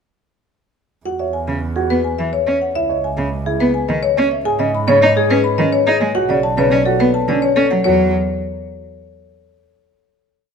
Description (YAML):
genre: classical, minimalist pattern music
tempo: 106 BPM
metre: 3/4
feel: straight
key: E major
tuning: A4 = 441 Hz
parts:
  - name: marimba with medium hard mallets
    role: melody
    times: 1.1-8.1 s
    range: G#4 to B5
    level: -18 LUFS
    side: left 8 dB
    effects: none
  - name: dark baby grand piano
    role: arpeggios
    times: 1.1-8.1 s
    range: C#4 to D#5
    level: -20 LUFS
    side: right 8 dB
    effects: none
  - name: rich double bass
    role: bass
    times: 1.1-8.1 s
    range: B1 to G#2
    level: -24 LUFS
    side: right 4 dB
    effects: none
  - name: rich cello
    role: accompaniment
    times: 1.5-8.1 s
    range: C#3 to D#4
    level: -19 LUFS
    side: right 2 dB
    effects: none
room: moderate large studio reverb, RT60 1.4 s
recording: none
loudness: -14 LUFS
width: side -6 dB against mid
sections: 1.1-7.9 A section; 7.9-9.6 final chord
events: none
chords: 1.1 Eadd9; 2.8 C#m; 4.5 G#m; 6.2 Bm7; 7.9 Esus2